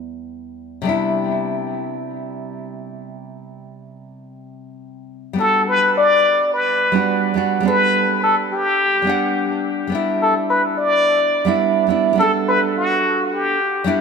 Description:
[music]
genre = chillout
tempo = 106 BPM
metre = 4/4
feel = straight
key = unclear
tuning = A4 = 440 Hz
[part]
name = nylon-string guitar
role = accompaniment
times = 0.0-14.0 s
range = E2 to F#5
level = -21 LUFS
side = moving between left 5 dB and right 8 dB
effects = auto-pan, analog delay
[part]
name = trumpet with plunger mute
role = melody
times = 5.4-13.9 s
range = F#4 to D5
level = -16 LUFS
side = left 2 dB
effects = analog delay
[sound]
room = moderate plate reverb, RT60 2.5 s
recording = echo-heavy mix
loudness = -15 LUFS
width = side -5 dB against mid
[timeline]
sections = 0.0-5.4 A section; 5.4-14.0 B section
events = none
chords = 0.0 Em9; 0.9 Cmaj9; 5.4 Gmaj9; 9.9 G69

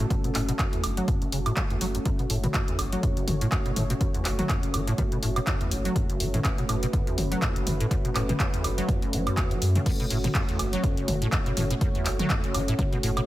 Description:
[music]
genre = acid house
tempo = 123 BPM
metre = 4/4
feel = swing 56% on 16ths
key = F# minor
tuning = A4 = 441 Hz
[part]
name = dark analog pad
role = sustained chords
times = 0.0-13.3 s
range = A3 to C#5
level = -32 LUFS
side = right 1 dB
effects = chorus, sidechain pumping
[part]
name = acid bass, square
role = riff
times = 0.0-13.2 s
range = F#1 to A3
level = -29 LUFS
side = equal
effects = tube saturation, ensemble chorus, sidechain pumping
[part]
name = saturated sub bass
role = bass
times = 0.0-13.2 s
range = F#1 to F#2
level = -30 LUFS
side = equal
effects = sidechain pumping
[part]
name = punchy analog drum machine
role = drums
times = 0.0-13.3 s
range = crash cymbal, handclaps, hi-hat, toms, woodblock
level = -30 LUFS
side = equal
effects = none
[part]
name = electronic kick drum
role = drums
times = 0.1-12.9 s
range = none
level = -27 LUFS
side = equal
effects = none
[sound]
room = digital ambience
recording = none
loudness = -23 LUFS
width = side -15 dB against mid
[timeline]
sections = 0.0-13.3 A section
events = filter sweep on acid bass 0.0-13.3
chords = 0.0 F#m

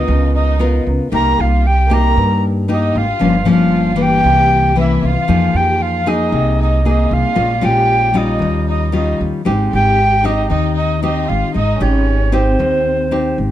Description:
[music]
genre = bossa nova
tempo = 115 BPM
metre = 4/4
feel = straight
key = Ab major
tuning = A4 = 440 Hz
[part]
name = mellow tenor recorder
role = melody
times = 0.0-13.4 s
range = C5 to Bb5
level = -17 LUFS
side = right 1 dB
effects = plate reverb
[part]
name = warm studio violin section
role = second line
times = 0.0-13.4 s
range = C4 to Bb4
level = -25 LUFS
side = right 1 dB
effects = none
[part]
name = nylon-string guitar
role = accompaniment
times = 0.0-13.5 s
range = G2 to Bb4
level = -17 LUFS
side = left 3 dB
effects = none
[part]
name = upright bass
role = bass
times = 0.0-13.5 s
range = G1 to G2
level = -17 LUFS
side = right 1 dB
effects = none
[sound]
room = moderate small room reverb, RT60 0.6 s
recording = dark, warm production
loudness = -12 LUFS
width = side -12 dB against mid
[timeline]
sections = 0.0-13.5 A section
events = none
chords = 0.1 Db13; 1.1 Cm7; 3.2 Gm7b5; 4.2 C7b9; 5.3 Fm7; 7.4 Bbm7; 8.4 Eb9; 9.5 Abmaj7

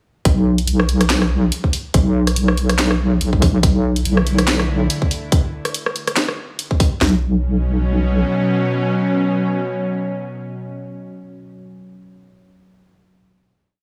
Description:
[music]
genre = deep dubstep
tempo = 142 BPM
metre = 4/4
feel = swing 56% on 16ths, half-time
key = B minor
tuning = A4 = 440 Hz
[part]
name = deep soft wobble bass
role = bass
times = 0.3-8.2 s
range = B1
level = -18 LUFS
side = equal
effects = chorus
[part]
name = garage drum kit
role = drums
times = 0.3-7.1 s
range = kick drum, snare drum, toms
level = -18 LUFS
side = equal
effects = none
[part]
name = garage drum kit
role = drums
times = 0.3-6.9 s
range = handclaps, hi-hat, rim click, snare drum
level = -23 LUFS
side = equal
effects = none
[part]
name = bowed-like drone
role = sustained chords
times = 4.0-11.2 s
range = B2 to E4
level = -24 LUFS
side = equal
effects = built-in reverb
[sound]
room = light reverb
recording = studio reverb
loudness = -18 LUFS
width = mono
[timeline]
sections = 0.3-7.0 drop; 7.0-10.4 final chord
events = drop 0.3-7.0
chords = 0.3 N.C.; 3.6 D5/B; 7.0 Bsus2

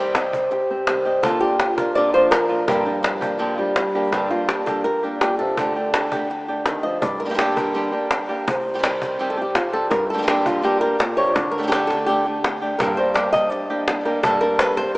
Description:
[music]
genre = flamenco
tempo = 166 BPM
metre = 4/4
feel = straight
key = G minor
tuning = A4 = 440 Hz
[part]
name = flamenco guitar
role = melody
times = 0.0-15.0 s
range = G2 to Eb5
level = -20 LUFS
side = equal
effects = none
[part]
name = flamenco guitar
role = stabs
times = 0.0-15.0 s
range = G2 to A4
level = -24 LUFS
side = right 1 dB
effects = none
[part]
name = cajon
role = percussion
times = 0.1-15.0 s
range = none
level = -24 LUFS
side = left 1 dB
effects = none
[sound]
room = wet lush hall reverb, RT60 2.7 s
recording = rough home demo mix, small speaker sound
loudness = -18 LUFS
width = side -24 dB against mid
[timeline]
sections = 0.0-4.1 A section; 4.1-15.0 B section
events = nylon-string guitar solo 4.1-15.0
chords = 0.0 Cm; 1.2 Bb; 2.7 Gm7; 4.1 Gm; 5.6 Dsus4; 7.0 Gm; 8.5 Cm; 9.9 Gm; 11.4 Dsus4; 12.8 Gm; 14.2 Gmadd9

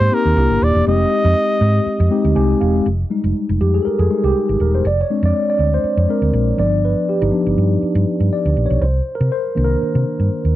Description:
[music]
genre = polished 1980s jazz-funk pop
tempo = 121 BPM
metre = 4/4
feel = swing 54% on 16ths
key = F dorian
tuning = A4 = 441 Hz
[part]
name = breathy flugelhorn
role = melody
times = 0.0-2.6 s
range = Bb4 to Eb5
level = -19 LUFS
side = equal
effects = none
[part]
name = mellow tine electric piano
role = accompaniment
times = 0.0-10.6 s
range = Eb3 to Ab5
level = -17 LUFS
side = left 1 dB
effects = medium stereo tremolo, analog chorus
[part]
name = hollow-body short-scale fingered electric bass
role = bass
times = 0.0-10.5 s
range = Eb1 to C3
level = -16 LUFS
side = right 1 dB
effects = none
[sound]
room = small room reverb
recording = dry, close 1970s-style studio recording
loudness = -14 LUFS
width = side -14 dB against mid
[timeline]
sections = 0.0-2.9 A section; 2.9-10.6 B section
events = tine electric piano fill 2.1-2.9; tine electric piano solo 2.9-10.6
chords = 0.4 C7; 0.9 Fm7; 2.9 Fm9; 4.8 Bb7/F; 6.6 G7; 8.8 Cm7

